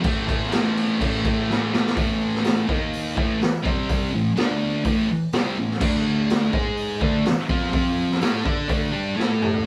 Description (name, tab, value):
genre	garage rock duo or trio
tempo	125 BPM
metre	4/4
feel	straight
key	A minor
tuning	A4 = 440 Hz
part	thick fuzz guitar	riff	0.0-9.7 s	A2 to D5	-24 LUFS	equal	distortion
part	raw garage drum kit	drums	0.0-9.6 s	crash cymbal, hi-hat, kick drum, snare drum, toms	-26 LUFS	equal	none
room	wet small room reverb, RT60 0.5 s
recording	band playing live in one room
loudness	-22 LUFS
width	mono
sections	0.0-2.0 A section; 2.0-9.7 B section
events	drum fill 1.5-2.0, 9.2-9.7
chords	0.0 A5; 2.7 D#5; 3.2 A5; 3.6 C5; 4.1 A5; 4.4 D5; 4.8 Am; 5.8 D5; 6.5 G#5; 7.0 D5; 7.7 F5; 8.2 D5; 9.2 A5